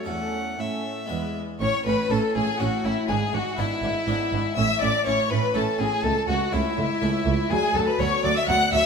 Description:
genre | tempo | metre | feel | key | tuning
classical, baroque-style concerto movement with solo episodes | 122 BPM | 3/4 | straight | A major | A4 = 440 Hz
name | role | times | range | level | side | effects
rich chamber violin section | melody | 0.0-8.9 s | A4 to F#6 | -31 LUFS | left 4 dB | none
rich violin | melody | 0.0-8.9 s | E4 to F#5 | -27 LUFS | left 1 dB | none
rich chamber violin section | second line | 0.0-8.9 s | B3 to F#5 | -28 LUFS | left 4 dB | none
harpsichord | accompaniment | 0.0-8.9 s | C#2 to B4 | -30 LUFS | equal | none
rich studio viola section | accompaniment | 0.0-8.8 s | F#3 to D4 | -33 LUFS | equal | none
rich chamber cello section | bass | 0.0-8.8 s | C#2 to A2 | -30 LUFS | right 4 dB | none
warm chamber double bass section | bass | 1.6-8.8 s | G#1 to D2 | -30 LUFS | right 5 dB | none
room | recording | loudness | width
moderate scoring stage reverb, RT60 1.5 s | none | -21 LUFS | side -6 dB against mid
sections
0.0-1.6 A section; 1.6-8.9 B section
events
none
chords
0.1 A/E; 1.1 E; 1.6 A; 3.1 E7/G#; 4.6 A; 6.0 A/C#; 7.5 Bm/D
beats
| 0.08 0.59 1.10 | 1.61 2.11 2.60 | 3.09 3.58 4.08 | 4.57 5.06 5.55 | 6.04 6.53 7.01 | 7.50 8.00 8.48

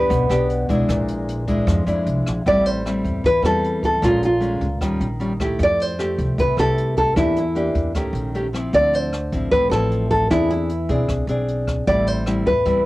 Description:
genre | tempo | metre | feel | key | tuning
bossa nova | 153 BPM | 4/4 | straight | A minor | A4 = 440 Hz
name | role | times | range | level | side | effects
nylon-string guitar | melody | 0.0-12.9 s | E4 to D5 | -19 LUFS | equal | none
nylon-string guitar | accompaniment | 0.0-12.9 s | A2 to G#4 | -23 LUFS | left 1 dB | cassette tape
upright bass | bass | 0.0-12.8 s | A1 to F2 | -24 LUFS | equal | none
jazz brush drum kit | drums | 0.1-12.7 s | hi-hat, kick drum, rim click | -28 LUFS | equal | cassette tape
room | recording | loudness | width
moderate booth ambience, RT60 0.2 s | home recording on cassette | -17 LUFS | side -18 dB against mid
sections
0.0-2.5 A section; 2.5-12.9 B section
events
nylon-string guitar solo 0.0-2.5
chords
0.0 Em7; 0.9 Bb7#11; 2.5 Am7; 4.0 Bbm7; 4.8 D#9; 5.6 Fmaj9; 7.2 Em7b5; 7.9 D#7#11; 8.7 Dm9; 10.3 E7b13; 11.9 Am9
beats
0.10 0.49 | 0.88 1.27 1.67 2.06 | 2.45 2.84 3.24 3.63 | 4.02 4.41 4.81 5.20 | 5.59 5.98 6.38 6.77 | 7.16 7.55 7.95 8.34 | 8.73 9.12 9.52 9.91 | 10.30 10.70 11.09 11.48 | 11.87 12.27 12.66

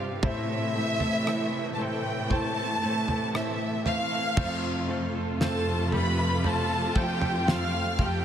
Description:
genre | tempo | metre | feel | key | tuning
pop ballad | 58 BPM | 4/4 | straight | F major | A4 = 440 Hz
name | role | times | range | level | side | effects
clear concert grand piano | accompaniment | 0.0-8.2 s | A2 to C5 | -33 LUFS | equal | analog chorus
warm studio string section | sustained chords | 0.0-8.2 s | C3 to F4 | -35 LUFS | equal | none
direct-recorded clean electric guitar | arpeggios | 0.0-8.2 s | A2 to A4 | -40 LUFS | right 5 dB | analog chorus, tape echo
muted studio cello section | bass | 0.0-8.2 s | F2 to A2 | -31 LUFS | equal | none
damped 70s drum kit | drums | 0.2-8.2 s | crash cymbal, kick drum, rim click, snare drum, toms | -30 LUFS | equal | none
warm studio violin section | melody | 0.3-8.2 s | G4 to F6 | -30 LUFS | equal | tape echo
room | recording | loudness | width
moderate lush hall reverb, RT60 2.7 s | dreamy mix soaked in reverb | -25 LUFS | side -9 dB against mid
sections
0.0-4.4 A section; 4.4-8.2 B section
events
none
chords
0.2 Am; 4.4 F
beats
| 0.23 1.27 2.30 3.34 | 4.37 5.41 6.44 7.48

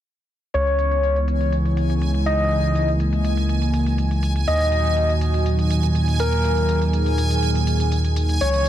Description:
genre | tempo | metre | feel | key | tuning
progressive house | 122 BPM | 4/4 | straight | C# dorian | A4 = 441 Hz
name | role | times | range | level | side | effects
soft octave-layered synth lead | melody | 0.5-8.7 s | A#4 to D#5 | -24 LUFS | left 2 dB | chorus, tape echo
warm analog pad | sustained chords | 0.5-8.7 s | A#2 to G#4 | -23 LUFS | equal | chorus
round analog bass | bass | 0.5-8.7 s | C#2 to D#2 | -21 LUFS | equal | none
electronic hi-hat | drums | 0.5-8.7 s | none | -40 LUFS | left 1 dB | low-pass filter on hats
backwards swelling texture | texture | 1.8-8.7 s | G#5 | -30 LUFS | right 4 dB | built-in reverb
room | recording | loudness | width
light reverb, digital ambience | dense, heavily limited modern master | -18 LUFS | side -11 dB against mid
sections
0.5-8.7 A section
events
filter sweep on drum 0.5-8.7; filter sweep on analog synth pad 0.5-8.7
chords
0.5 C#m7; 4.5 D#m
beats
| 0.54 1.03 1.52 2.02 | 2.51 3.00 3.49 3.98 | 4.47 4.97 5.46 5.95 | 6.44 6.93 7.43 7.92 | 8.41

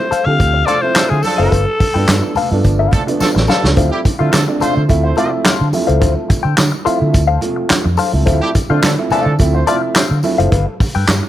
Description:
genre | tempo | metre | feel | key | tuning
funk | 107 BPM | 4/4 | straight | D dorian | A4 = 441 Hz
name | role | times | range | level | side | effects
raspy alto saxophone | melody | 0.0-2.7 s | G#4 to F5 | -18 LUFS | left 2 dB | tape echo
dark upright piano | stabs | 0.0-10.5 s | F3 to G4 | -19 LUFS | right 3 dB | none
direct-recorded clean electric guitar | accompaniment | 0.1-11.3 s | A4 to G5 | -19 LUFS | left 8 dB | wah, vibrato effect
vintage muted fingered electric bass | bass | 0.1-11.2 s | F#1 to D3 | -16 LUFS | equal | none
warm soul drum kit | drums | 0.1-11.2 s | handclaps, hi-hat, kick drum, snare drum | -16 LUFS | equal | none
tambourine | percussion | 0.1-11.2 s | none | -33 LUFS | left 4 dB | none
congas | percussion | 0.4-11.2 s | none | -25 LUFS | right 4 dB | none
clear horn section | second line | 0.7-9.8 s | D3 to D5 | -22 LUFS | right 2 dB | none
room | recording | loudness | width
little or no reverb | none | -12 LUFS | side -12 dB against mid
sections
0.0-3.8 A section; 3.8-11.3 B section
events
alto saxophone solo 0.0-3.8; drum fill 3.2-3.8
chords
0.0 Dm7; 1.5 G9; 3.8 Dm7; 10.5 G9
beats
0.40 0.96 | 1.52 2.08 2.65 3.21 | 3.77 4.33 4.90 5.46 | 6.02 6.58 7.15 7.71 | 8.27 8.84 9.40 9.96 | 10.52 11.09

